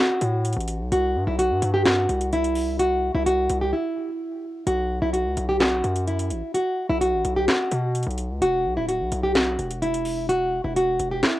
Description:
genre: hip hop, trap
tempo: 128 BPM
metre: 4/4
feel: half-time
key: unclear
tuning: A4 = 440 Hz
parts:
  - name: nylon-string guitar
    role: melody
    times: 0.0-11.4 s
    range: E4 to G4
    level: -22 LUFS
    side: equal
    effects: cassette tape, analog delay
  - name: distorted 808-style bass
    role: bass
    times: 0.2-11.2 s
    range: D1 to B2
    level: -27 LUFS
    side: equal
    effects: distortion
  - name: trap drum kit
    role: drums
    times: 0.2-11.3 s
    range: handclaps, hi-hat, snare drum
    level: -24 LUFS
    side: equal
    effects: overdrive, cassette tape
room: little or no reverb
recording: home recording on cassette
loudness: -21 LUFS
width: side -15 dB against mid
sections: 0.0-4.7 A section; 4.7-11.4 B section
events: break 3.7-4.7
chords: 0.0 A5; 0.9 C; 4.7 B5; 8.4 E5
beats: 0.45 | 0.92 1.39 1.85 2.32 | 2.79 3.26 3.73 4.20 | 4.67 5.14 5.61 6.07 | 6.54 7.01 7.48 7.95 | 8.42 8.89 9.36 9.82 | 10.29 10.76 11.23

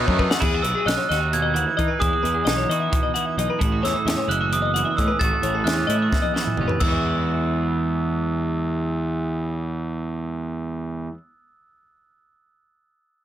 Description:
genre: math rock and midwest emo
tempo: 263 BPM (eighths)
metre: 7/8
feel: straight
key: E major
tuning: A4 = 435 Hz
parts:
  - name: twelve-string electric guitar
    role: arpeggios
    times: 0.0-11.2 s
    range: G#4 to F#5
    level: -28 LUFS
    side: left 9 dB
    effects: none
  - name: fuzz picked electric bass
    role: bass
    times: 0.0-11.1 s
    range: F1 to E3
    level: -25 LUFS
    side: equal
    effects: overdrive
  - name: crisp fusion drum kit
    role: drums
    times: 0.1-6.9 s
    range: crash cymbal, hi-hat, kick drum, snare drum, toms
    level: -25 LUFS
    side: equal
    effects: none
  - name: twelve-string electric guitar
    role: accompaniment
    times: 0.4-11.2 s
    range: E2 to F#4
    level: -28 LUFS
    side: right 7 dB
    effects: wide subtle chorus
  - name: glockenspiel with rubber mallets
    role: melody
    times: 0.6-11.1 s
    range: D#6 to A6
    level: -26 LUFS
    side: right 4 dB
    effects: slapback echo
room: little or no reverb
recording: none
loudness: -20 LUFS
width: side -11 dB against mid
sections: 0.4-6.8 A section; 6.8-10.0 B section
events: drum fill 0.1-0.4, 6.1-6.8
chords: 0.4 Emaj9; 3.6 A6; 6.8 Eadd9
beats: 0.19 | 0.42 0.64 0.87 1.10 1.33 1.55 1.78 | 2.01 2.24 2.46 2.69 2.92 3.15 3.38 | 3.61 3.83 4.06 4.29 4.52 4.75 4.98 | 5.21 5.43 5.66 5.89 6.12 6.35 6.58 | 6.81 7.03 7.26 7.49 7.72 7.95 8.18 | 8.41 8.63 8.86 9.09 9.32 9.55 9.78

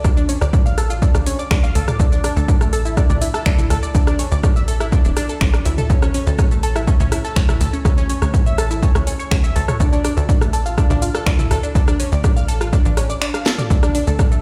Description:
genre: melodic techno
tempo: 123 BPM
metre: 4/4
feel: straight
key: D harmonic minor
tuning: A4 = 439 Hz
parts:
  - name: unison pluck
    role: arpeggios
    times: 0.0-14.4 s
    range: A3 to F6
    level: -26 LUFS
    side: equal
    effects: cassette tape, sidechain pumping, delay
  - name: tight sequencer bass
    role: bass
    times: 0.0-14.4 s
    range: D1 to D2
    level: -22 LUFS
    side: equal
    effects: sidechain pumping
  - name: electronic kick drum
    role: drums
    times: 0.0-14.3 s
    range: none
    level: -19 LUFS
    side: equal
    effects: studio reverb
  - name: house drum kit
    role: drums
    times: 0.0-14.4 s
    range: finger snaps, hi-hat, rim click, shaker, snare drum, toms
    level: -26 LUFS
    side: equal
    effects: studio reverb
room: little or no reverb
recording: played on a big sound system in a bare room, stone room reverb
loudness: -17 LUFS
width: mono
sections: 0.0-14.4 A section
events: drum fill 13.5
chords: 0.0 Dm; 2.0 Dsus2; 5.9 A; 9.8 Asus4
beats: | 0.04 0.53 1.02 1.51 | 2.00 2.48 2.97 3.46 | 3.95 4.44 4.92 5.41 | 5.90 6.39 6.88 7.36 | 7.85 8.34 8.83 9.31 | 9.80 10.29 10.78 11.27 | 11.75 12.24 12.73 13.22 | 13.70 14.19

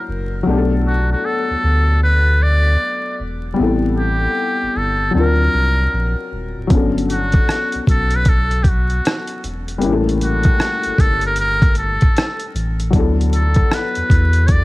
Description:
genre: lo-fi hip hop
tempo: 77 BPM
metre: 4/4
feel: swing 65% on 16ths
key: D major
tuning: A4 = 440 Hz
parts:
  - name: trumpet with metal mute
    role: melody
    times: 0.0-14.6 s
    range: F#4 to D5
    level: -20 LUFS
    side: equal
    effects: low-pass filter, cassette tape, analog delay
  - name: felt-muted upright piano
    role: accompaniment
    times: 0.0-14.6 s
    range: F#3 to A#4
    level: -22 LUFS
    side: left 3 dB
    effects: low-pass filter, cassette tape
  - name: warm sub bass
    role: bass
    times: 0.1-14.6 s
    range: D1 to E2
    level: -18 LUFS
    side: equal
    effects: none
  - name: dusty soul sampler-style drum kit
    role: drums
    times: 6.7-14.6 s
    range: hi-hat, kick drum, rim click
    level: -15 LUFS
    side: equal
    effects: cassette tape
room: small room ambience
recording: home recording on cassette, vinyl crackle, lossy compression artefacts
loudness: -14 LUFS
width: side -19 dB against mid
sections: 0.0-14.6 A section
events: none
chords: 0.5 Bm7; 3.6 Am9; 5.1 D7alt; 6.7 Gmaj9#11; 9.8 A7b9; 12.9 D69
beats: | 0.47 1.25 2.03 2.81 | 3.58 4.36 5.14 5.92 | 6.70 7.48 8.26 9.04 | 9.82 10.60 11.38 12.16 | 12.94 13.71 14.49

